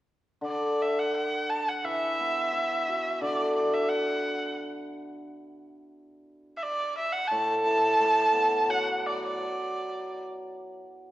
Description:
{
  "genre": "chinese traditional, Chinese chamber ensemble",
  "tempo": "87 BPM",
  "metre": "4/4",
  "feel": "rubato",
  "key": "D gong mode",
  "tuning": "A4 = 441 Hz",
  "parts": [
    { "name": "hammered dulcimer", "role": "accompaniment", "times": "0.4-10.8 s", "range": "A2 to F#4", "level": "-30 LUFS", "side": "left 1 dB", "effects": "none" },
    { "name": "bright erhu", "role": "melody", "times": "0.5-10.2 s", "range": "D5 to A5", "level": "-27 LUFS", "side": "right 1 dB", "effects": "none" }
  ],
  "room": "moderate recital hall reverb, RT60 1.7 s",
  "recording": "worn, warbling old tape, cassette tape, warbly pitch drift",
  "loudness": "-25 LUFS",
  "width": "side -15 dB against mid",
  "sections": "0.4-11.1 A section",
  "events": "none",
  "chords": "none",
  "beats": "| 0.43 1.14 1.84 2.54 | 3.23 3.92 4.60 5.28 | 5.96 6.64 7.32 8.01 | 8.70 9.39 10.08"
}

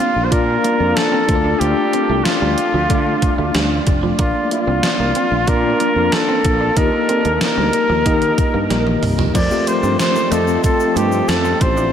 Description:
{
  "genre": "1980s-style pop",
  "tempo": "93 BPM",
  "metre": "4/4",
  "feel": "straight",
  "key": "unclear",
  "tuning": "A4 = 442 Hz",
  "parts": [
    { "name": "clear flugelhorn", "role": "melody", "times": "0.0-11.9 s", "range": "F4 to D5", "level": "-18 LUFS", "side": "equal", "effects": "none" },
    { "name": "bell-like tine electric piano", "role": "accompaniment", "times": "0.0-11.9 s", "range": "A3 to Eb5", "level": "-20 LUFS", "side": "left 2 dB", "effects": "fast stereo tremolo" },
    { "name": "electric guitar at the edge of break-up", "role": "riff", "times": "0.0-11.9 s", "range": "F3 to D4", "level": "-26 LUFS", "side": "right 4 dB", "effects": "none" },
    { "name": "sustaining fretless electric bass", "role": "bass", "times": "0.2-11.9 s", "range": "F1 to Eb3", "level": "-21 LUFS", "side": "equal", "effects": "none" },
    { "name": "gated 80s digital drum machine", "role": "drums", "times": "0.3-11.8 s", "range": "crash cymbal, hi-hat, kick drum, snare drum, toms", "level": "-21 LUFS", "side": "equal", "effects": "gated reverb, gated reverb snare, overdrive" },
    { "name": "lush unison pad", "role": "sustained chords", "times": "9.3-11.9 s", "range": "F3 to C4", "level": "-26 LUFS", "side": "left 2 dB", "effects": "chorus, phaser" },
    { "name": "tube shaker", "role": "percussion", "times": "9.4-11.9 s", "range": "none", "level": "-37 LUFS", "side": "left 8 dB", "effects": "none" }
  ],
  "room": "wet huge ambient reverb, RT60 8.9 s",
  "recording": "dreamy mix soaked in reverb",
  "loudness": "-14 LUFS",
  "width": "side -8 dB against mid",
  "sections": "0.0-9.4 A section; 9.4-11.9 B section",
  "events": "drum fill 8.7-9.4",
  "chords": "0.0 Bb; 1.3 Dm; 4.2 Bb; 6.8 Eb; 9.4 F",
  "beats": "0.32 0.96 | 1.61 2.25 2.90 3.54 | 4.19 4.83 5.48 6.12 | 6.77 7.42 8.06 8.71 | 9.35 10.00 10.64 11.29"
}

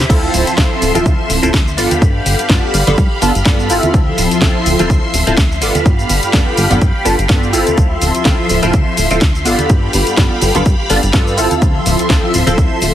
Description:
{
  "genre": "filtered disco house",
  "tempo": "125 BPM",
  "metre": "4/4",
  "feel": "swing 55% on 16ths",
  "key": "D dorian",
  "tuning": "A4 = 439 Hz",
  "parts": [
    { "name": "string machine, full ensemble", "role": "sustained chords", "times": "0.0-12.9 s", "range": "F3 to C6", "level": "-19 LUFS", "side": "left 1 dB", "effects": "phaser, ensemble chorus, sidechain pumping, low-pass filter" },
    { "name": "plucky analog bass", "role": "bass", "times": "0.0-12.9 s", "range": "D1 to G2", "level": "-18 LUFS", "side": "equal", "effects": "sidechain pumping, low-pass filter" },
    { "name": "house drum kit", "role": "drums", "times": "0.0-12.9 s", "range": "crash cymbal, hi-hat, shaker, snare drum", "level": "-19 LUFS", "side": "left 1 dB", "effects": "overdrive, sidechain pumping on hats, sidechain pumping on perc, sidechain pumping on cymbals" },
    { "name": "funky polysynth comp", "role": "accompaniment", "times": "0.1-12.9 s", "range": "B3 to A4", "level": "-16 LUFS", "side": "right 1 dB", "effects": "chorus, phaser, cassette tape, sidechain pumping, low-pass filter" },
    { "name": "electronic kick drum", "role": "drums", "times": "0.1-12.7 s", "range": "none", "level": "-13 LUFS", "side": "equal", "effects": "overdrive" },
    { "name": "maracas and congas", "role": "percussion", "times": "0.1-12.9 s", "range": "none", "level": "-23 LUFS", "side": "right 2 dB", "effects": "none" }
  ],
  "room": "light reverb, digital ambience",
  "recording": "heavily compressed radio sound",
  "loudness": "-10 LUFS",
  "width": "side -11 dB against mid",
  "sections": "0.1-12.9 A section",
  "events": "drop 0.1-12.9",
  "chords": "0.1 Dm9; 1.8 G7; 3.9 Dm9; 5.6 G7; 7.8 Dm9; 9.5 G7; 11.6 Dm9",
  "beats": "| 0.10 0.58 1.06 1.54 | 2.02 2.50 2.98 3.46 | 3.94 4.42 4.90 5.38 | 5.86 6.34 6.82 7.30 | 7.78 8.26 8.74 9.22 | 9.70 10.18 10.66 11.14 | 11.62 12.10 12.58"
}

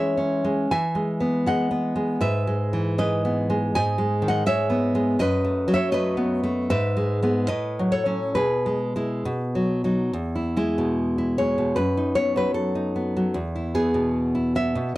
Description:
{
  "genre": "romantic piece for solo classical guitar",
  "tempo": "66-85 BPM",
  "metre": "2/4",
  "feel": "rubato",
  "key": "E major from 3.8 s",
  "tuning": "A4 = 440 Hz",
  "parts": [
    { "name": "nylon-string guitar", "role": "solo", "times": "0.0-14.9 s", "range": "E2 to G#5", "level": "-21 LUFS", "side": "equal", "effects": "none" }
  ],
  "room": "light reverb",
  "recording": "dry, close 1970s-style studio recording",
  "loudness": "-21 LUFS",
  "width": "side -17 dB against mid",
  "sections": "0.0-10.2 A section; 10.2-15.0 B section",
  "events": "none",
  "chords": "0.0 C#m/E; 0.7 E; 2.2 E/G#; 3.8 G#m; 5.2 B7/F#; 6.7 E/G#; 7.5 F#m/A; 8.4 E/B; 9.3 B; 10.2 E; 11.8 B7/F#; 13.4 E",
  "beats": "| 0.71 1.47 | 2.22 2.98 | 3.75 4.48 | 5.20 5.94 | 6.71 7.52 | 8.38 9.27 | 10.15 10.98 | 11.77 12.57 | 13.37 14.16 | 14.95"
}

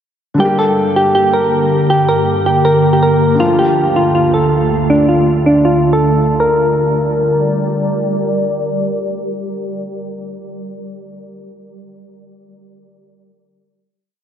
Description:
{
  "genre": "hip hop, trap",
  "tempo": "160 BPM",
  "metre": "4/4",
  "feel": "half-time",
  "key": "G minor",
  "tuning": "A4 = 438 Hz",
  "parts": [
    { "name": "felt-muted upright piano", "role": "accompaniment", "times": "0.3-6.4 s", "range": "D3 to G4", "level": "-21 LUFS", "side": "left 1 dB", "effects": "none" },
    { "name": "soft electric-piano-like synth keys", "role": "melody", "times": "0.4-7.5 s", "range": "D4 to Bb4", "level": "-13 LUFS", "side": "equal", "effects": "chorus, diffuse ambient delay" },
    { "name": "glassy FM pad", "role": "sustained chords", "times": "0.9-10.2 s", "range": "D2 to D5", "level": "-17 LUFS", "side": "equal", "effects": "ensemble chorus, built-in reverb, phaser" }
  ],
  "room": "wet huge ambient reverb, RT60 7.3 s",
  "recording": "dreamy mix soaked in reverb, low-pass filter, nothing above 7.7 kHz",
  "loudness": "-11 LUFS",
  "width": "side -9 dB against mid",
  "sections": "0.4-6.4 breakdown; 6.4-9.4 final chord",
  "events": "filter sweep 0.4-6.4",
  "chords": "0.4 Gm; 3.4 Dm; 6.4 Gm",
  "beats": "| 0.40 0.77 1.15 1.52 | 1.90 2.27 2.65 3.02 | 3.40 3.77 4.15 4.52 | 4.90 5.27 5.65 6.02 | 6.40 6.77 7.15 7.52 | 7.90 8.27 8.65 9.02"
}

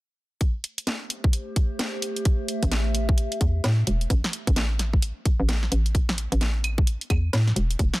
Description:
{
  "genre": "UK garage, two-step garage",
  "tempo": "130 BPM",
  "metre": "4/4",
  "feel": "swing 61% on 16ths",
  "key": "A minor",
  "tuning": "A4 = 440 Hz",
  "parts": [
    { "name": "electronic kick drum", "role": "drums", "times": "0.4-7.9 s", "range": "none", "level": "-22 LUFS", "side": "equal", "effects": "none" },
    { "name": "garage drum kit", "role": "drums", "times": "0.4-8.0 s", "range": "claves, hi-hat, snare drum", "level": "-29 LUFS", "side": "equal", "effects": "none" },
    { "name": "warbly tape-like pad", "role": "texture", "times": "1.2-4.1 s", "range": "A3 to E5", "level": "-33 LUFS", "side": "right 1 dB", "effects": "chorus, built-in reverb, sidechain pumping" },
    { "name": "hollow knocking FM bass", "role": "bass", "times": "2.6-7.9 s", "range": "E1 to A2", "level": "-24 LUFS", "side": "equal", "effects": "sidechain pumping" }
  ],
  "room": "little or no reverb",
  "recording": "dense, heavily limited modern master",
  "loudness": "-22 LUFS",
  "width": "side -20 dB against mid",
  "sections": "0.4-4.1 A section; 4.1-8.0 B section",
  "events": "fade-in on ambient pad 0.4-4.1; kick drops out 3.6-4.1",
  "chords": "0.4 Am7",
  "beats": "| 0.41 0.87 1.33 1.79 | 2.25 2.72 3.18 3.64 | 4.10 4.56 5.02 5.49 | 5.95 6.41 6.87 7.33 | 7.79"
}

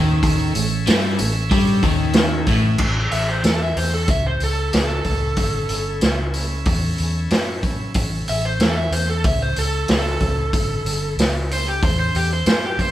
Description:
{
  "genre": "blues rock power trio and southern rock",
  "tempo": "93 BPM",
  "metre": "4/4",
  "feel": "straight",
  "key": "A mixolydian",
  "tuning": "A4 = 438 Hz",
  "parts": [
    { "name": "overdriven tonewheel organ", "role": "sustained chords", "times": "0.0-12.9 s", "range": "C#4 to E5", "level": "-32 LUFS", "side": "right 2 dB", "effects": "slow rotary speaker" },
    { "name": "crunchy overdriven guitar", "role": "riff", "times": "0.0-2.8 s", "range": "A2 to G3", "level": "-20 LUFS", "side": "equal", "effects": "none" },
    { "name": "vintage muted fingered electric bass", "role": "bass", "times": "0.0-12.9 s", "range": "G1 to G2", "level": "-22 LUFS", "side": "equal", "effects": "none" },
    { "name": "vintage drum kit", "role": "drums", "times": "0.2-12.9 s", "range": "crash cymbal, hi-hat, kick drum, snare drum", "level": "-20 LUFS", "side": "equal", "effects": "none" },
    { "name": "overdriven slide guitar", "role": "melody", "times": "3.1-12.9 s", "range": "G4 to E5", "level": "-24 LUFS", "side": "equal", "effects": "none" }
  ],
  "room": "light reverb",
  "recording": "band playing live in one room",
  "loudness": "-17 LUFS",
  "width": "side -13 dB against mid",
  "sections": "0.0-2.8 A section; 2.8-12.9 B section",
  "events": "electric slide guitar solo 2.8-12.9",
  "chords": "0.0 A",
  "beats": "| 0.23 0.87 1.51 2.16 | 2.80 3.44 4.09 4.73 | 5.38 6.02 6.67 7.31 | 7.96 8.60 9.25 9.89 | 10.54 11.18 11.83 12.48"
}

